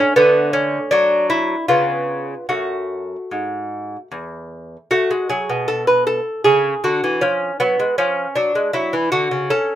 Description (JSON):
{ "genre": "classical, baroque-style dance for lute", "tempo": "73-80 BPM", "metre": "3/4", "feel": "rubato", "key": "F# minor", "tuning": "A4 = 440 Hz", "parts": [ { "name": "lute", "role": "solo", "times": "0.0-9.8 s", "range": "E2 to B4", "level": "-16 LUFS", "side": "equal", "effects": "none" } ], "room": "light reverb", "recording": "minimal, uncompressed stereo recording", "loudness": "-16 LUFS", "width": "side -12 dB against mid", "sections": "0.0-4.9 A section; 4.9-9.8 B section", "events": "none", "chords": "0.2 D; 1.7 C#7; 2.5 F#m; 7.2 Fdim7; 8.8 F#5" }